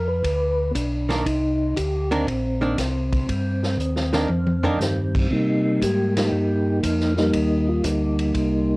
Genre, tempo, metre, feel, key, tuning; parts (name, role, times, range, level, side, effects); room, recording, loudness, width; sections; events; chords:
soul jazz organ trio; 119 BPM; 4/4; swing 68% on 8ths; C minor; A4 = 438 Hz
percussive tonewheel organ; melody; 0.0-8.8 s; Eb3 to B4; -22 LUFS; equal; slow rotary speaker, chorus vibrato, cassette tape
tonewheel organ; bass; 0.0-8.8 s; Bb1 to C3; -24 LUFS; equal; slow rotary speaker
vintage drum kit; drums; 0.2-8.5 s; crash cymbal, hi-hat, kick drum, ride cymbal, snare drum, toms; -28 LUFS; equal; cassette tape
archtop guitar, miked and amplified; accompaniment; 1.1-4.8 s; Eb3 to D4; -24 LUFS; right 2 dB; cassette tape
moderate small room reverb, RT60 0.6 s; home recording on cassette; -19 LUFS; side -23 dB against mid
0.0-5.3 A section; 5.3-8.8 A section
drum fill 3.8-4.8; band accent 6.1
0.0 G7 (rootless); 1.3 Cm9